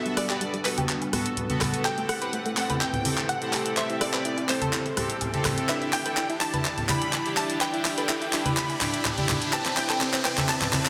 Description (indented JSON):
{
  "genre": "progressive house",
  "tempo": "125 BPM",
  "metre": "4/4",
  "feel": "straight",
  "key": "unclear",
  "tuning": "A4 = 442 Hz",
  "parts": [
    { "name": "unison pluck", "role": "melody", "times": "0.0-10.9 s", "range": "B4 to B5", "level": "-35 LUFS", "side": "equal", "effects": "dub echo" },
    { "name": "rich studio violin section", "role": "second line", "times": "0.0-10.9 s", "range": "B4 to B5", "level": "-38 LUFS", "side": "equal", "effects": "dub echo" },
    { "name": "lush unison pad", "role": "sustained chords", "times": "0.0-10.9 s", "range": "G3 to E5", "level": "-38 LUFS", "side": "equal", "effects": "chorus, phaser" },
    { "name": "soft supersaw", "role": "stabs", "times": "0.0-10.9 s", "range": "B3 to C5", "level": "-33 LUFS", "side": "equal", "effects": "dub echo" },
    { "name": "round analog bass", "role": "bass", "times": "0.0-10.9 s", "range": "none", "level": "barely audible", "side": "none", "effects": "none" },
    { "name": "riser", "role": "sound effects", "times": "3.5-10.9 s", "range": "none", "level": "-40 LUFS", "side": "equal", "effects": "none" },
    { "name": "analog pluck", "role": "arpeggios", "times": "0.1-10.9 s", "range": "G3 to C5", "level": "-38 LUFS", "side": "equal", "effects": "chorus, dub echo" },
    { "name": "deep house drum kit", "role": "drums", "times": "0.1-10.9 s", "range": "handclaps, hi-hat, rim click", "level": "-31 LUFS", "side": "equal", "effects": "soft clipping on snare" },
    { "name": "woodblock and congas", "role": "percussion", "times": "0.2-10.8 s", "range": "none", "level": "-34 LUFS", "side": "equal", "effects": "none" }
  ],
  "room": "wet concert hall reverb, RT60 1.9 s, digital ambience",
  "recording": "dense, heavily limited modern master",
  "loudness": "-26 LUFS",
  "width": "mono",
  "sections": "0.0-10.9 A section",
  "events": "build-up 0.0-10.9; drum fill 0.0-10.9; filter sweep on synth arpeggio sound 0.0-10.9; filter sweep on analog synth pad 0.0-10.9",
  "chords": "0.0 Gmaj9; 1.9 Am7; 5.7 Em7; 9.5 Cmaj7"
}